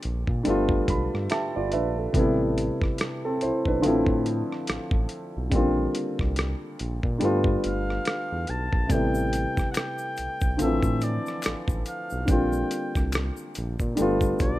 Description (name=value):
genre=R&B, neo-soul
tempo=71 BPM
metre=4/4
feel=swing 59% on 16ths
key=unclear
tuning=A4 = 444 Hz
part: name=dark baby grand piano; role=accompaniment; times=0.0-14.6 s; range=C3 to B5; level=-26 LUFS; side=equal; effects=none
part: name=dusty soul sampler-style drum kit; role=drums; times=0.0-14.6 s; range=hi-hat, kick drum, rim click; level=-27 LUFS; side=equal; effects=overdrive
part: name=smooth synth bass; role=bass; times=0.1-14.6 s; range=G1 to Bb2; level=-29 LUFS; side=equal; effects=none
part: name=warm oboe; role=melody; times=7.7-14.6 s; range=D5 to A5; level=-33 LUFS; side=left 1 dB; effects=tape echo
part: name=egg shaker and finger snaps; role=percussion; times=8.9-14.6 s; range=none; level=-43 LUFS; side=left 6 dB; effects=none
room=small room ambience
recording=rough home demo mix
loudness=-23 LUFS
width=side -15 dB against mid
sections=0.0-14.6 A section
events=grand piano fill 0.4-2.1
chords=0.4 G9; 2.1 Am9; 3.8 Dm7/A; 5.5 Bb6; 7.2 G9; 8.9 Am9; 10.6 Dm7/A; 12.3 Bb6; 14.0 G9